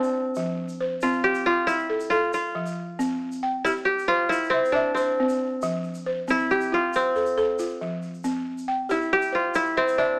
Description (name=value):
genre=west african traditional, West African string and xylophone music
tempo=91 BPM (dotted quarters)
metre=12/8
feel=straight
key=C major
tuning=A4 = 436 Hz
part: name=kora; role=melody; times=0.0-10.2 s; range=C4 to G4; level=-26 LUFS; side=equal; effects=none
part: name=balafon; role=arpeggios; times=0.0-10.2 s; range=F3 to G5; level=-30 LUFS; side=equal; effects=none
part: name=egg shaker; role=percussion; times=0.0-10.0 s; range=none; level=-50 LUFS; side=equal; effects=none
room=moderate recital hall reverb, RT60 1.6 s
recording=small speaker sound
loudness=-25 LUFS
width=mono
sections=0.0-10.2 A section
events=none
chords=0.4 F; 3.0 C; 5.6 F; 8.2 C